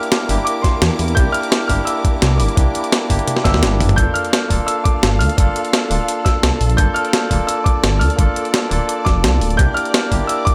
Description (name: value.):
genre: liquid drum and bass.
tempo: 171 BPM.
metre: 4/4.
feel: straight.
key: G dorian.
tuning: A4 = 440 Hz.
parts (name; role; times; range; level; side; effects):
dark grand piano; melody; 0.0-10.5 s; C6 to G6; -26 LUFS; equal; delay.
barky tine electric piano; accompaniment; 0.0-10.5 s; Bb3 to A4; -24 LUFS; equal; overdrive, delay.
warm symphonic string section; sustained chords; 0.0-10.5 s; E4 to D6; -31 LUFS; equal; sidechain pumping.
breakbeat sampler-style drum kit; drums; 0.0-10.5 s; hi-hat, snare drum, toms; -21 LUFS; equal; none.
swelling detuned saw bass; bass; 0.3-10.2 s; D1 to E2; -20 LUFS; equal; none.
electronic kick drum; drums; 0.6-10.5 s; none; -19 LUFS; equal; none.
room: light reverb.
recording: none.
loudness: -16 LUFS.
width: mono.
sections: 0.0-10.5 A section.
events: drum fill 3.3-4.0.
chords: 0.0 C9; 4.0 Gm9; 9.6 C9 (rootless).